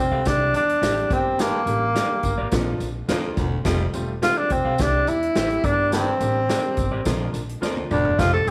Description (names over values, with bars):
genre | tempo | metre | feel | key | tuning
uptempo 1960s-style soul | 106 BPM | 4/4 | straight | unclear | A4 = 440 Hz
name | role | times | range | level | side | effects
breathy tenor saxophone | melody | 0.0-8.5 s | Bb3 to A4 | -24 LUFS | equal | none
warm baby grand piano | accompaniment | 0.0-8.5 s | F3 to G4 | -33 LUFS | equal | none
upright bass | bass | 0.0-8.5 s | E1 to E2 | -29 LUFS | equal | none
electric guitar through a small old amp | stabs | 0.1-7.7 s | F4 to F5 | -37 LUFS | equal | subtle chorus
swinging big-band drum kit | drums | 0.3-8.5 s | hi-hat, kick drum, snare drum, toms | -30 LUFS | equal | none
tambourine | percussion | 0.3-8.5 s | none | -44 LUFS | equal | none
breathy baritone saxophone | riff | 1.4-8.4 s | D2 to G2 | -33 LUFS | equal | none
room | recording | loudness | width
light reverb, small room ambience | none | -22 LUFS | mono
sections
0.0-8.5 A section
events
tenor saxophone solo 0.0-8.5; drum fill 7.6-8.2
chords
0.3 C; 1.1 Gm; 2.5 Bb; 3.7 Fadd9; 4.8 C; 5.6 Gm; 7.1 Bb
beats
0.26 0.82 | 1.39 1.96 2.52 3.09 | 3.65 4.22 4.79 5.35 | 5.92 6.49 7.05 7.62 | 8.18